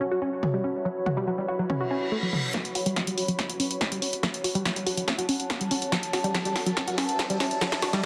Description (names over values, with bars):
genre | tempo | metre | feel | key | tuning
driving peak-time techno | 142 BPM | 4/4 | straight | F# phrygian | A4 = 440 Hz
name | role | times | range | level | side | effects
tight sequenced synth | riff | 0.0-8.1 s | F#3 to F#4 | -31 LUFS | equal | chorus, phaser, sidechain pumping, dub echo
deep dark ambient pad | texture | 0.0-8.1 s | F#4 to B5 | -34 LUFS | equal | chorus, built-in reverb, sidechain pumping
punchy analog drum machine | drums | 0.4-8.0 s | hi-hat, snare drum, toms | -31 LUFS | equal | high-pass filter on cymbals, high-pass filter on toms, high-pass filter on snare, high-pass filter on hats
reverse cymbal and riser | sound effects | 1.9-8.1 s | none | -40 LUFS | equal | none
electronic kick drum | drums | 2.5-7.7 s | none | -39 LUFS | equal | high-pass filter on kick
room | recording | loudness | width
wet plate reverb, RT60 1.6 s, digital ambience | heavily compressed radio sound, multiband compression | -27 LUFS | mono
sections
0.0-2.5 A section; 2.5-8.1 B section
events
filter sweep on synth arpeggio sound 0.0-2.5, 2.5-8.1; reverse cymbal 1.9-2.5; build-up 2.5-8.1; drum fill 2.5-8.1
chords
0.0 F#5; 2.5 F#m